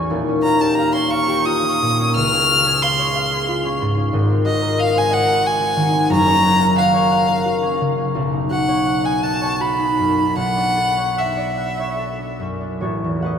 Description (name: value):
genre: classical, impressionist duo for violin and harp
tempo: 70-93 BPM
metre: 3/4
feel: rubato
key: unclear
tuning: A4 = 440 Hz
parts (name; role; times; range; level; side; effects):
- concert harp; accompaniment; 0.0-13.4 s; D#1 to F#5; -19 LUFS; left 1 dB; none
- clear violin; melody; 0.4-12.4 s; D#5 to E#6; -18 LUFS; equal; none
room: wet cathedral reverb, RT60 5.7 s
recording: in a vast, echoing space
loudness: -16 LUFS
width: side -7 dB against mid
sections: 0.0-12.8 A section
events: none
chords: 0.1 D#9; 2.1 C#maj7; 4.1 G#9; 6.1 F#maj7; 8.1 Badd9; 10.4 Bm11; 12.8 A6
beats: | 0.09 0.76 1.44 | 2.14 2.81 3.46 | 4.12 4.78 5.44 | 6.10 6.77 7.45 | 8.14 8.85 9.59 | 10.36 11.17 11.98 | 12.82